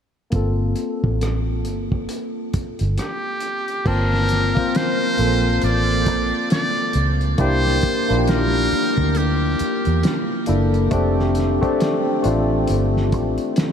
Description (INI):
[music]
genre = R&B, neo-soul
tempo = 68 BPM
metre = 4/4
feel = swing 60% on 16ths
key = G minor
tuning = A4 = 439 Hz
[part]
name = barky tine electric piano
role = accompaniment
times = 0.3-13.7 s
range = A3 to A5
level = -21 LUFS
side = left 2 dB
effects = overdrive, analog chorus
[part]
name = vintage muted fingered electric bass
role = bass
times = 0.3-13.4 s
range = F1 to E2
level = -20 LUFS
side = right 1 dB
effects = none
[part]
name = cloth-damped thuddy drum kit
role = drums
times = 0.3-13.7 s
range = crash cymbal, hi-hat, kick drum, rim click, snare drum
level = -25 LUFS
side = equal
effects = none
[part]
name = trumpet with metal mute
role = melody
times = 3.0-10.5 s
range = G4 to D5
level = -24 LUFS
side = equal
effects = analog delay
[sound]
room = moderate huge ambient reverb, RT60 7.7 s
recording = dreamy mix soaked in reverb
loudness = -17 LUFS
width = side -8 dB against mid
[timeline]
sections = 0.3-3.9 A section; 3.9-13.7 B section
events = none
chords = 0.3 Gm11; 7.4 C7; 10.9 F6